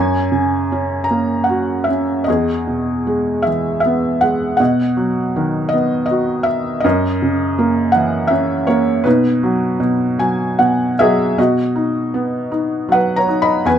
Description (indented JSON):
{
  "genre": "classical, lyrical solo piano",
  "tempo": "79 BPM",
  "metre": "3/4",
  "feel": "uneven beats, rubato",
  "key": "B major",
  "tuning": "A4 = 441 Hz",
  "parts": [
    { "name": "felt-muted upright piano", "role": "solo", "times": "0.0-13.8 s", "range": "E2 to B5", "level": "-14 LUFS", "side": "equal", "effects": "none" }
  ],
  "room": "light reverb",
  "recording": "none",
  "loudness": "-14 LUFS",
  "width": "side -9 dB against mid",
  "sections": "0.0-11.4 A section; 11.4-13.8 B section",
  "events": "felt piano fill 9.8-11.4",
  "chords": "0.0 F#; 2.3 E; 4.6 B; 6.8 F#7; 9.0 B",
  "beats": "0.71 1.49 | 2.27 3.06 3.84 | 4.60 5.35 6.10 | 6.84 7.58 8.31 | 9.05 9.80 10.59 | 11.38 12.15 12.91 | 13.67"
}